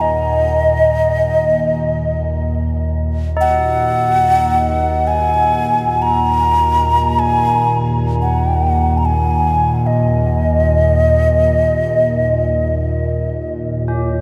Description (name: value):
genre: world meditative, free-time meditation music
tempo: free time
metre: none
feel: none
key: Eb minor pentatonic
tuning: A4 = 443 Hz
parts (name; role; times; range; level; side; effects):
- breathy bright xiao; melody; 0.0-13.5 s; Eb5 to Bb5; -18 LUFS; equal; analog delay
- warbly tape-like pad; drone; 0.0-14.2 s; Eb2 to Bb2; -20 LUFS; equal; chorus, built-in reverb, phaser
- tubular bells; texture; 0.0-14.2 s; Db4 to Gb4; -28 LUFS; equal; none
room: wet huge ambient reverb, RT60 7.5 s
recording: dreamy mix soaked in reverb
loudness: -15 LUFS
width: mono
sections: 0.0-2.7 A section; 2.7-14.2 A section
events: none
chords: none